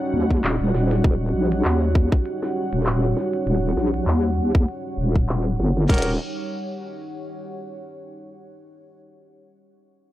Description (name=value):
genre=glitch hop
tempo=99 BPM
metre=4/4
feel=swing 56% on 16ths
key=unclear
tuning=A4 = 441 Hz
part: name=dark analog pad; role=sustained chords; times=0.0-6.2 s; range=G3 to G5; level=-28 LUFS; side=right 1 dB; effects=chorus, sidechain pumping
part: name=deep dark ambient pad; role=texture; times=0.0-8.3 s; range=G3 to F#5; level=-30 LUFS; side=equal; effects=chorus, built-in reverb, sidechain pumping
part: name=wobble bass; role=bass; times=0.1-6.2 s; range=Eb1 to Eb2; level=-21 LUFS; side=equal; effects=chorus
part: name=electronic kick drum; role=drums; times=0.3-6.0 s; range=none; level=-18 LUFS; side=equal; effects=none
part: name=glitchy drum kit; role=drums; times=0.3-6.1 s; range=crash cymbal, handclaps, hi-hat, snare drum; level=-29 LUFS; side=equal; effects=low-pass filter on snare, low-pass filter on hats, low-pass filter on cymbals, low-pass filter on room
part: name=clear horn section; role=stabs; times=5.9-6.1 s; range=Db4 to Bb4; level=-28 LUFS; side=equal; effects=sidechain pumping, tape echo
room=light reverb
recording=dry, gritty hardware recording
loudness=-19 LUFS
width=side -14 dB against mid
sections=0.0-5.9 A section; 5.9-8.3 B section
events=filter sweep on drum 0.0-5.9; filter sweep on wobble bass 0.0-5.9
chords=0.0 Eb7#9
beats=0.44 | 1.04 1.65 2.26 2.86 | 3.47 4.07 4.68 5.29 | 5.89 6.50 7.11 7.71